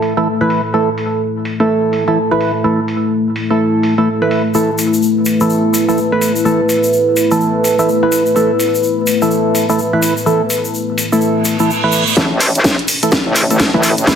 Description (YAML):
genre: bass house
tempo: 126 BPM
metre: 4/4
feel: swing 62% on 16ths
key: unclear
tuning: A4 = 440 Hz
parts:
  - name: dark analog pad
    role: sustained chords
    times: 0.0-14.2 s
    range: A3 to B4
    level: -16 LUFS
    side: left 1 dB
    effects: chorus, phaser, sidechain pumping
  - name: percussive organ stab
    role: stabs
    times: 0.0-14.2 s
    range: E3 to B4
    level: -15 LUFS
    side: right 1 dB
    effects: chorus, phaser, sidechain pumping, digital delay
  - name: house drum kit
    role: drums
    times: 0.0-14.2 s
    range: hi-hat, snare drum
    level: -20 LUFS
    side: equal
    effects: overdrive, low-pass filter on hats, low-pass filter on snare, low-pass filter on cymbals, low-pass filter on room
  - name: egg shaker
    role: percussion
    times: 4.5-14.2 s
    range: none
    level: -22 LUFS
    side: left 3 dB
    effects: none
  - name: reverse cymbal and riser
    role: sound effects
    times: 11.4-14.2 s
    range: none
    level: -22 LUFS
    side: right 5 dB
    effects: none
  - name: metallic wobble bass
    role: bass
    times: 12.2-14.2 s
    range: A1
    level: -15 LUFS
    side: equal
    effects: chorus, sidechain pumping, high-pass filter
  - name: electronic kick drum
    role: drums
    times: 12.2-14.2 s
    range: none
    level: -17 LUFS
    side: equal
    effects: overdrive, high-pass filter on kick, high-pass filter on room
room: wet digital room reverb, RT60 1.2 s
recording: heavily compressed radio sound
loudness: -12 LUFS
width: side -8 dB against mid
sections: 0.0-12.2 A section; 12.2-14.2 B section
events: reverse cymbal 11.4-12.2; build-up 12.2-14.2; drum fill 12.2-14.2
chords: 0.0 A5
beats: 0.26 | 0.74 1.22 1.69 2.17 | 2.64 3.12 3.60 4.07 | 4.55 5.02 5.50 5.98 | 6.45 6.93 7.41 7.88 | 8.36 8.83 9.31 9.79 | 10.26 10.74 11.21 11.69 | 12.17 12.64 13.12 13.60 | 14.07